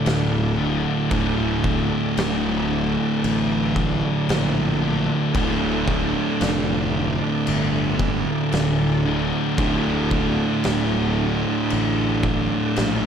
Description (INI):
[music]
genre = stoner and doom metal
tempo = 57 BPM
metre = 4/4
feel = straight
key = unclear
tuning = A4 = 441 Hz
[part]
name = bright tonewheel organ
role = sustained chords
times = 0.0-13.1 s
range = D3 to D4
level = -32 LUFS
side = equal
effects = slow rotary speaker, overdrive, chorus vibrato
[part]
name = fuzz guitar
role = riff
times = 0.0-13.1 s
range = D2 to D3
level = -24 LUFS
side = left 8 dB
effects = distortion
[part]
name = thick fuzz guitar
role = riff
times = 0.0-13.1 s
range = D2 to D3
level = -23 LUFS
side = right 8 dB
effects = distortion
[part]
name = fuzz fingered electric bass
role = bass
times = 0.1-13.1 s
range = D1 to Bb1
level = -26 LUFS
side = equal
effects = overdrive
[part]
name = oversized low-tuned drum kit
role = drums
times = 0.1-13.0 s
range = crash cymbal, kick drum, snare drum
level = -27 LUFS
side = equal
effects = none
[sound]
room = light reverb, small room ambience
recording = none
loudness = -19 LUFS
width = side -8 dB against mid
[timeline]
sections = 0.0-13.1 A section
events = none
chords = 0.0 D5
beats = 0.06 | 1.12 2.17 3.23 4.29 | 5.35 6.41 7.46 8.52 | 9.58 10.64 11.70 12.76